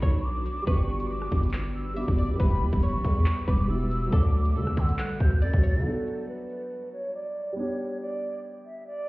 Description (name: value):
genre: hip hop, drill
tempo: 139 BPM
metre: 4/4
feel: half-time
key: B minor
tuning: A4 = 440 Hz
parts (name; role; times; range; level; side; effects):
- breathy hollow jazz flute; melody; 0.0-9.1 s; A4 to A6; -34 LUFS; right 1 dB; low-pass filter, digital delay
- string-like resonator pluck; second line; 0.0-5.8 s; A4 to E5; -41 LUFS; equal; chorus, phaser, digital delay
- felt-muted upright piano; accompaniment; 0.0-9.1 s; F#3 to G4; -35 LUFS; right 1 dB; low-pass filter
- granular cloud pad; sustained chords; 0.0-5.8 s; G3 to B5; -39 LUFS; left 1 dB; built-in reverb
- growling 808-style bass; bass; 0.0-5.8 s; D1 to D3; -26 LUFS; equal; none
- drill drum kit; drums; 0.0-5.7 s; handclaps, hi-hat, kick drum, rim click; -24 LUFS; equal; none
room: little or no reverb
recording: heard muffled through a wall, stone room reverb, EQ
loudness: -24 LUFS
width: side -20 dB against mid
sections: 0.0-5.9 A section; 5.9-9.1 B section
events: filter sweep 5.9-9.1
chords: 0.0 Bm; 0.7 G; 2.4 Em; 4.1 D; 5.9 Bm; 7.6 G